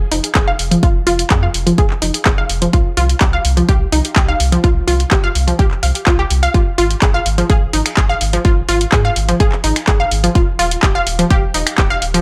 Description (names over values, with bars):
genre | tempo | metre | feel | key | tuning
progressive house | 126 BPM | 4/4 | straight | unclear | A4 = 440 Hz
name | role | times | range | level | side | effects
round analog bass | bass | 0.0-12.2 s | Eb1 to Ab2 | -21 LUFS | equal | sidechain pumping
unison pluck | arpeggios | 0.1-12.2 s | F3 to F5 | -20 LUFS | equal | sidechain pumping, tape echo
pop drum kit | drums | 0.1-12.2 s | finger snaps, handclaps, hi-hat | -22 LUFS | equal | none
electronic kick drum | drums | 0.4-11.9 s | none | -17 LUFS | equal | none
room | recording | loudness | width
light reverb | none | -14 LUFS | mono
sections
0.0-12.2 A section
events
filter sweep on synth pluck 0.0-12.2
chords
0.0 N.C.; 2.7 Csus4; 6.5 Ab5; 10.4 Ebsus2